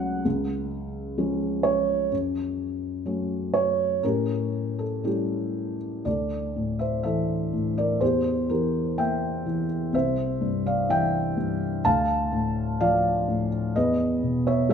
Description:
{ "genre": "classical, lyrical solo piano", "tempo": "63 BPM", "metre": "4/4", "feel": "rubato", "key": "D minor from 6.1 s", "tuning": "A4 = 440 Hz", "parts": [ { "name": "felt-muted upright piano", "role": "solo", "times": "0.0-14.7 s", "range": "C2 to A5", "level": "-23 LUFS", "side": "equal", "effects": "none" } ], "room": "moderate recital hall reverb, RT60 1.7 s", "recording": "minimal, uncompressed stereo recording", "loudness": "-23 LUFS", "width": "side -7 dB against mid", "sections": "0.0-6.1 A section; 6.1-14.7 B section", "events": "none", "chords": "0.3 C#; 2.1 F#m; 4.0 A7; 6.1 Dsus2; 8.0 Edim; 9.9 C; 11.8 Dm; 13.8 E5" }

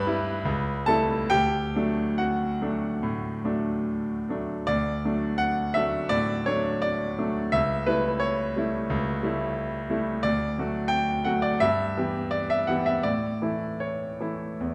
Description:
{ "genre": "classical, romantic character piece for solo piano", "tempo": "67-91 BPM", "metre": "4/4", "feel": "rubato", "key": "D major", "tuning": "A4 = 440 Hz", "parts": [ { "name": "bright grand piano", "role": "solo", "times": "0.0-14.7 s", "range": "C#2 to B5", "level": "-26 LUFS", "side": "equal", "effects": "none" } ], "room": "moderate recital hall reverb, RT60 1.4 s", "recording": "none", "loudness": "-27 LUFS", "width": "mono", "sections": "0.0-4.7 A section; 4.7-14.7 B section", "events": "none", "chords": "0.5 A7/C#; 1.3 D; 7.5 A7/C#; 10.2 D; 11.6 Em/G; 13.0 A" }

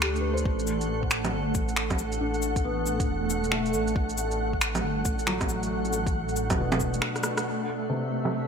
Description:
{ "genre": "future garage", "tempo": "137 BPM", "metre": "4/4", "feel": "swing 63% on 16ths", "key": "unclear", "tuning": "A4 = 439 Hz", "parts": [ { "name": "felt-muted upright piano", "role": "accompaniment", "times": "0.0-8.5 s", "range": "B2 to C5", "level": "-33 LUFS", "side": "left 2 dB", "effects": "sidechain pumping, low-pass filter, tape echo" }, { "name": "granular cloud pad", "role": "sustained chords", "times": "0.0-8.5 s", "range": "A3 to G5", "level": "-30 LUFS", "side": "right 1 dB", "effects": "built-in reverb, sidechain pumping" }, { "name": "dark detuned saw bass", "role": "bass", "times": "0.0-7.0 s", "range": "E1 to D2", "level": "-31 LUFS", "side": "equal", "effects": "sidechain pumping" }, { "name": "electronic finger snaps, shaker, cabasa, bongos and rim click", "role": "drums", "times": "0.0-8.3 s", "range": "none", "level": "-29 LUFS", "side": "right 1 dB", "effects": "overdrive, low-pass filter on snare, low-pass filter on perc" }, { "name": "electronic kick drum", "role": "drums", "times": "0.5-6.9 s", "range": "none", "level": "-30 LUFS", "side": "equal", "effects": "none" }, { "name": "flickering grainy texture", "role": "texture", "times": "0.8-8.5 s", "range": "E5 to F#5", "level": "-36 LUFS", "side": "equal", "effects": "built-in reverb" } ], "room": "light reverb", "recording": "none", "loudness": "-25 LUFS", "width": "side -6 dB against mid", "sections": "0.0-7.5 A section; 7.5-8.5 B section", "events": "drum fill 7.0-7.5; band accent 7.4; filter sweep on drum 7.5-8.5; filter sweep on felt piano 7.5-8.5", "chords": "0.5 G (rootless); 7.5 Am7" }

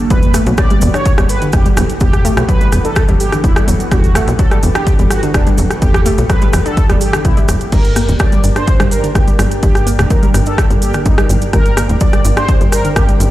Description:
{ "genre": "melodic techno", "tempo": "126 BPM", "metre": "4/4", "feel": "straight", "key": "unclear", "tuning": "A4 = 442 Hz", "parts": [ { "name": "lush unison pad", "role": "sustained chords", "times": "0.0-13.3 s", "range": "E3 to G4", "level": "-25 LUFS", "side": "equal", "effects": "chorus, phaser, sidechain pumping" }, { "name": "granular cloud pad", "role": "texture", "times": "0.0-13.3 s", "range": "Bb3 to G5", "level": "-25 LUFS", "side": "equal", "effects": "built-in reverb, sidechain pumping" }, { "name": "mellow synth brass", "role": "melody", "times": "0.1-13.1 s", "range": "D4 to D5", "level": "-21 LUFS", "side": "right 2 dB", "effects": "chorus, sidechain pumping, digital delay" }, { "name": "warbly dusty pluck", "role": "arpeggios", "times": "0.1-13.2 s", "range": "D3 to D5", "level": "-20 LUFS", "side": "equal", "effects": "chorus, sidechain pumping, digital delay" }, { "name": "tight sequencer bass", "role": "bass", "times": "0.1-13.3 s", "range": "D1 to B1", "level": "-14 LUFS", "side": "equal", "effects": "sidechain pumping" }, { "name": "electronic kick drum", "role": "drums", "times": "0.1-13.1 s", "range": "none", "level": "-13 LUFS", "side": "equal", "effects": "none" }, { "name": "house drum kit", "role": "drums", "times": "0.1-13.3 s", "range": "crash cymbal, hi-hat, rim click", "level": "-20 LUFS", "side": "equal", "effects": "sidechain pumping on hats, sidechain pumping on cymbals" }, { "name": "cabasa", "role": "percussion", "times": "0.1-13.3 s", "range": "none", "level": "-29 LUFS", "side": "right 3 dB", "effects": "none" } ], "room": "little or no reverb", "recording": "played on a big sound system in a bare room, large studio reverb", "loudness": "-10 LUFS", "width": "side -15 dB against mid", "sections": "0.0-13.3 A section", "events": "none", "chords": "0.1 Emadd9; 7.7 Gm" }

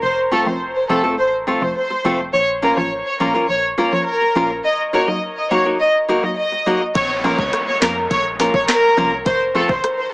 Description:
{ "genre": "dancehall", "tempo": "104 BPM", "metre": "4/4", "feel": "straight", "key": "Bb harmonic minor", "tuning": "A4 = 438 Hz", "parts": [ { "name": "warm studio violin section", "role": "melody", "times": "0.0-10.1 s", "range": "A4 to Eb5", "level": "-17 LUFS", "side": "equal", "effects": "dub echo" }, { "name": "solid FM bass", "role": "bass", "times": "0.0-9.8 s", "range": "F1 to F2", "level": "-32 LUFS", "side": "equal", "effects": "none" }, { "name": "mallet-like synth pluck", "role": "accompaniment", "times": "0.3-9.7 s", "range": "F3 to Bb4", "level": "-25 LUFS", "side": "equal", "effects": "chorus, phaser, sidechain pumping, dub echo" }, { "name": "nylon-string guitar", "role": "arpeggios", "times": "0.3-9.7 s", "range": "A3 to Bb4", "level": "-20 LUFS", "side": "left 1 dB", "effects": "none" }, { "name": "afro-pop drum kit", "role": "drums", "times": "7.0-10.0 s", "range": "handclaps, hi-hat, kick drum, rim click, snare drum", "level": "-21 LUFS", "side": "equal", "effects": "none" }, { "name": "downlifter", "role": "sound effects", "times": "7.0-10.1 s", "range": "none", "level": "-29 LUFS", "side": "equal", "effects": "none" } ], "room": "moderate spring reverb, RT60 2.4 s", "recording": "echo-heavy mix, small speaker sound", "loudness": "-15 LUFS", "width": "side -25 dB against mid", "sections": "0.0-7.0 A section; 7.0-10.1 B section", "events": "none", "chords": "0.0 F; 2.3 Bbm; 4.6 Ebm; 7.0 Bbm; 9.3 F" }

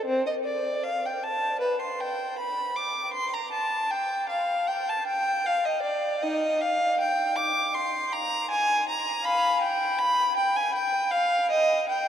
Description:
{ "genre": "classical, baroque-style suite movement for unaccompanied violin", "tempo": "78 BPM", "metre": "4/4", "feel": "rubato", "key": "unclear", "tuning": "A4 = 440 Hz", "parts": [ { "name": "dark violin", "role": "solo", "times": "0.0-12.1 s", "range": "C4 to D6", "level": "-24 LUFS", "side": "equal", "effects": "none" } ], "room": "wet huge ambient reverb, RT60 7.8 s", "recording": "in a vast, echoing space", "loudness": "-24 LUFS", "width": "side -9 dB against mid", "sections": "0.0-12.1 A section", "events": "none", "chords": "none" }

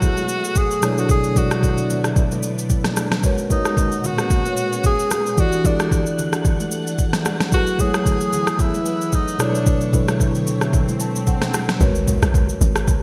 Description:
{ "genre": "amapiano", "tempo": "112 BPM", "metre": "4/4", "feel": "swing 55% on 16ths", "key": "G# phrygian", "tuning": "A4 = 440 Hz", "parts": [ { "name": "breathy alto saxophone", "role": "melody", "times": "0.0-10.2 s", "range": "D4 to G#4", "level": "-26 LUFS", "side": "equal", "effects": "delay" }, { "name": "mellow tine electric piano", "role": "accompaniment", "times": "0.0-13.0 s", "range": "B2 to A5", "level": "-25 LUFS", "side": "equal", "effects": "none" }, { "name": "ensemble organ-string", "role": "sustained chords", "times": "0.0-11.8 s", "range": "A#2 to F#5", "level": "-32 LUFS", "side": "equal", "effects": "phaser, ensemble chorus, sidechain pumping" }, { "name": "smooth R&B drum kit", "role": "drums", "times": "0.0-13.0 s", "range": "kick drum, rim click, shaker, snare drum", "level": "-22 LUFS", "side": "equal", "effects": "gated reverb" }, { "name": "congas", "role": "percussion", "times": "0.0-13.0 s", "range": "none", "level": "-34 LUFS", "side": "equal", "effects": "none" }, { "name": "swell and impact", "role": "sound effects", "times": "10.4-13.0 s", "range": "none", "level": "-31 LUFS", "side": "equal", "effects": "none" }, { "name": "tight log drum bass", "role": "bass", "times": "11.8-13.0 s", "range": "G#1 to B1", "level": "-22 LUFS", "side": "equal", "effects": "none" } ], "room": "moderate lush hall reverb, RT60 2.1 s", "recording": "bright 1980s-style digital production", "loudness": "-19 LUFS", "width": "mono", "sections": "0.0-11.8 A section; 11.8-13.0 B section", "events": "swell 10.4-11.8; tine electric piano fill 10.7-11.8; drop 11.8-13.0; impact 11.8-13.0", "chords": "0.0 F#m11; 0.8 Bm11; 3.2 G#m11; 5.4 Em11; 7.5 F#m11; 9.4 Bm11; 11.8 G#m11" }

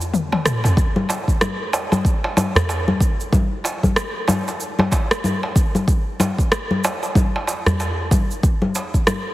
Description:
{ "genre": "downtempo", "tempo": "94 BPM", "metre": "4/4", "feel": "swing 59% on 16ths", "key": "none", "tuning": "none", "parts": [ { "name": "organic electronic drum kit", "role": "drums", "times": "0.0-9.2 s", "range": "cabasa, congas, rim click, toms", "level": "-20 LUFS", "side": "left 1 dB", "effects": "none" }, { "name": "darbuka", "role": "percussion", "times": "0.3-8.9 s", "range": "none", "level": "-24 LUFS", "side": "right 1 dB", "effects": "none" }, { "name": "electronic kick drum", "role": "drums", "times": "0.8-9.0 s", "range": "none", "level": "-18 LUFS", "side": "equal", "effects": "overdrive" } ], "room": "moderate lush hall reverb, RT60 2.6 s", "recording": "heavily compressed radio sound, multiband compression", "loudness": "-17 LUFS", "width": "side -16 dB against mid", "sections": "0.8-9.3 A section", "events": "break 0.0-0.8; drum fill 0.1-0.8", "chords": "none" }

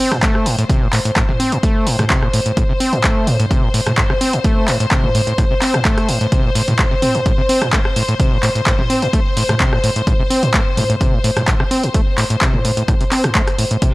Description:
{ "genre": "acid house", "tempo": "128 BPM", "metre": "4/4", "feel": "straight", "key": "A minor", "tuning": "A4 = 440 Hz", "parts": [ { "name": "warm studio string section", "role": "sustained chords", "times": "0.0-13.9 s", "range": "C5", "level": "-22 LUFS", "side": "left 2 dB", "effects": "sidechain pumping" }, { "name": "overdriven acid bass", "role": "riff", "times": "0.0-13.9 s", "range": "A2 to C4", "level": "-18 LUFS", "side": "equal", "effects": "distortion, tube saturation" }, { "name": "punchy analog drum machine", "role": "drums", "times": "0.1-13.9 s", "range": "handclaps, hi-hat, rim click, toms", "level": "-19 LUFS", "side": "equal", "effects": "none" }, { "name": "electronic kick drum", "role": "drums", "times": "0.2-13.9 s", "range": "none", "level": "-17 LUFS", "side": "equal", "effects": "none" }, { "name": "reverse cymbal", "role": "sound effects", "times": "13.9 s", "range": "none", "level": "-37 LUFS", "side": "equal", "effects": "none" } ], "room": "digital ambience", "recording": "dry, gritty hardware recording", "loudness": "-13 LUFS", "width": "side -20 dB against mid", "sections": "0.0-13.9 A section", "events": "none", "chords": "0.0 Am" }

